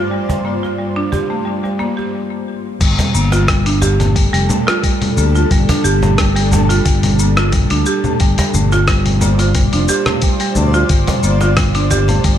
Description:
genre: organic downtempo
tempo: 89 BPM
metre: 4/4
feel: swing 53% on 16ths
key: G minor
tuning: A4 = 442 Hz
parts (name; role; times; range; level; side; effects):
- granular cloud pad; sustained chords; 0.0-12.4 s; G2 to D5; -23 LUFS; left 1 dB; built-in reverb, sidechain pumping
- buzzing marimba with medium hard mallets; arpeggios; 0.0-12.4 s; G3 to G4; -18 LUFS; right 2 dB; ping-pong delay
- cajon; percussion; 0.3-12.2 s; none; -22 LUFS; right 1 dB; none
- sustaining fretless electric bass; bass; 2.8-12.4 s; F1 to D2; -15 LUFS; left 1 dB; sidechain pumping
- dusty soul sampler-style drum kit; drums; 2.8-12.4 s; cabasa, congas, crash cymbal, hi-hat, rim click; -19 LUFS; left 2 dB; low-pass filter on hats, low-pass filter on cymbals, low-pass filter on perc, low-pass filter on snare, low-pass filter on room
- electronic kick drum; drums; 2.8-12.4 s; none; -16 LUFS; left 1 dB; none
room: light reverb, digital ambience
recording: none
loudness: -12 LUFS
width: side -10 dB against mid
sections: 0.0-2.8 A section; 2.8-12.4 B section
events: stop 2.1-2.8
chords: 0.0 Bbadd9/G (rootless); 2.8 G7(no3); 8.2 Bbadd9 (rootless)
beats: | 0.11 0.79 1.46 2.14 | 2.81 3.48 4.16 4.83 | 5.51 6.18 6.86 7.53 | 8.20 8.88 9.55 10.23 | 10.90 11.57 12.25

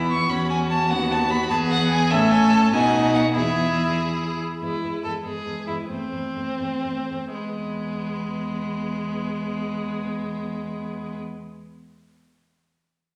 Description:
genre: quick classical-period movement for string quartet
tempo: 76-100 BPM (dotted quarters)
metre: 6/8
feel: straight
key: E major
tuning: A4 = 443 Hz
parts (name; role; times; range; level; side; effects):
- clear violin; second line; 0.0-11.2 s; G#3 to A4; -30 LUFS; equal; none
- rich viola; accompaniment; 0.0-11.2 s; G#3 to E4; -32 LUFS; equal; none
- rich cello; bass; 0.0-11.2 s; D#2 to B2; -28 LUFS; equal; none
- rich violin; melody; 0.1-11.2 s; B4 to C#6; -29 LUFS; equal; none
room: wet recital hall reverb, RT60 1.5 s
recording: none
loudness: -24 LUFS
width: mono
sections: 0.0-4.6 A section; 4.6-7.4 B section; 7.4-10.4 C section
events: slowing down 4.0-7.4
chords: 0.3 F#5/E; 0.9 B/D#; 1.5 E; 2.1 A; 2.7 B; 3.3 E; 5.9 Am/E; 7.4 E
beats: 0.29 | 0.91 1.51 | 2.11 2.72 | 3.35 3.98 | 4.62 5.24 | 5.89 6.59 | 7.35 8.12 | 8.88 9.65

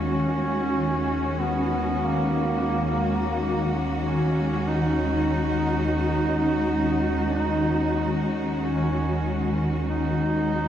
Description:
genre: dark ambient drone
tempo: 46 BPM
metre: 4/4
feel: straight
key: unclear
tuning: A4 = 439 Hz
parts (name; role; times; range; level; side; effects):
- warm duduk; melody; 0.0-10.7 s; Bb3 to D#4; -27 LUFS; right 1 dB; tape echo
- rich studio cello section; sustained chords; 0.0-10.7 s; D#3 to F#4; -26 LUFS; equal; none
- deep rumbling drone; drone; 0.0-10.7 s; D#2 to D#3; -27 LUFS; equal; built-in reverb, phaser
room: wet huge ambient reverb, RT60 7.9 s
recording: dark, warm production, lossy compression artefacts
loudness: -22 LUFS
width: side -10 dB against mid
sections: 0.0-10.7 A section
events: none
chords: 0.0 Badd9/D# (rootless)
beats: 0.74 2.06 3.38 | 4.68 5.99 7.29 8.60 | 9.89

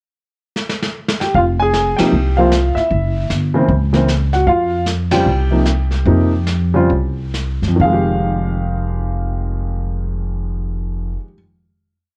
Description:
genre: jazz piano trio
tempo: 130-154 BPM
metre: 4/4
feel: swing 64% on 8ths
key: F minor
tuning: A4 = 440 Hz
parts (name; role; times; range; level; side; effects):
- vintage brush drum kit; drums; 0.6-8.2 s; brushed snare drum, hi-hat, kick drum, ride cymbal, snare drum; -26 LUFS; equal; none
- warm grand piano; melody; 1.2-11.3 s; F2 to Ab5; -19 LUFS; equal; none
- upright bass; bass; 1.3-11.2 s; F1 to Gb2; -20 LUFS; equal; none
room: light reverb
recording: worn, warbling old tape, cassette tape, warbly pitch drift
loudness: -17 LUFS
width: mono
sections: 0.0-1.3 pickup bar; 1.3-7.8 A section; 7.8-11.5 final chord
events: drum fill 0.6-1.3; band accent 1.9, 5.1; slowing down 4.5-7.8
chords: 0.0 N.C.; 1.3 Fmadd9; 2.9 Gb7(no3); 4.5 Fsus2; 7.8 Fm9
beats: 0.17 0.56 0.95 | 1.35 1.74 2.13 2.52 | 2.91 3.30 3.69 4.08 | 4.47 4.86 5.26 5.66 | 6.07 6.48 6.91 7.35 | 7.80 8.26 8.72 9.18 | 9.64 10.10 10.56 11.02

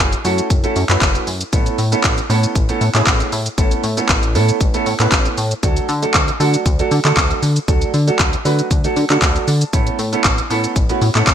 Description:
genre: dance-pop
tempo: 117 BPM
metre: 4/4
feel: straight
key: unclear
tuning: A4 = 440 Hz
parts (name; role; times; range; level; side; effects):
- warm concert grand piano; accompaniment; 0.0-11.3 s; F#3 to A5; -20 LUFS; right 4 dB; wide subtle chorus, sidechain pumping
- chorused synth bass; bass; 0.0-11.3 s; F#1 to D3; -18 LUFS; left 1 dB; sidechain pumping
- pop drum kit; drums; 0.1-11.3 s; handclaps, hi-hat, kick drum, shaker; -17 LUFS; left 1 dB; gated reverb
room: light reverb, digital ambience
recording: bright 1980s-style digital production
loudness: -14 LUFS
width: side -9 dB against mid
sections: 0.0-11.3 A section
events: grand piano fill 9.0-9.7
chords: 0.0 F#m7; 1.5 Aadd9; 5.6 D; 9.7 Aadd9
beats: 0.50 1.01 | 1.53 2.04 2.55 3.07 | 3.58 4.09 4.61 5.12 | 5.63 6.14 6.66 7.17 | 7.68 8.20 8.71 9.22 | 9.73 10.25 10.76 11.27

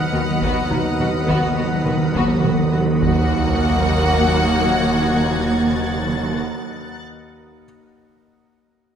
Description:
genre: cinematic, suspense film score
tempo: 52 BPM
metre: 4/4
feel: straight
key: Eb minor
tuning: A4 = 440 Hz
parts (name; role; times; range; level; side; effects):
- warm symphonic violin section; melody; 0.0-6.4 s; F#5; -26 LUFS; left 2 dB; none
- mellow French horn section; sustained chords; 0.0-6.4 s; Gb3 to B3; -29 LUFS; left 3 dB; none
- soft additive organ-like pad; sustained chords; 0.0-6.4 s; Bb4 to F#5; -29 LUFS; equal; ensemble chorus, built-in reverb
- analog drone; drone; 0.0-6.4 s; D#2; -26 LUFS; equal; chorus
- timpani; percussion; 0.0-6.4 s; D#3; -22 LUFS; right 2 dB; none
- clear baby grand piano; texture; 0.0-3.0 s; none; barely audible; none; none
- clear symphonic violin section; texture; 0.0-7.0 s; B5 to A6; -33 LUFS; left 3 dB; none
- warm symphonic violin section; second line; 0.1-6.4 s; F#4; -27 LUFS; left 1 dB; none
- warm symphonic viola section; accompaniment; 0.1-6.4 s; Bb3 to B3; -28 LUFS; right 2 dB; none
- round analog bass; riff; 0.1-2.8 s; D#3 to D#4; -25 LUFS; left 2 dB; none
- warm symphonic cello section; bass; 0.1-6.4 s; D#2; -26 LUFS; right 2 dB; none
- warm symphonic double bass section; bass; 0.1-6.4 s; D#2; -26 LUFS; right 3 dB; none
- taiko ensemble; drums; 0.4-5.3 s; none; -30 LUFS; equal; none
- sub drop; sound effects; 3.0-6.4 s; none; -29 LUFS; equal; none
room: moderate scoring stage reverb, RT60 1.9 s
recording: none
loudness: -16 LUFS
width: side -8 dB against mid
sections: 0.0-3.0 A section; 3.0-7.6 B section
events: timpani fill 0.0-3.0; impact 3.0-7.6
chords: 0.0 B/D#; 3.0 Ebm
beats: 0.71 1.86 | 3.02 4.17 5.33 6.48

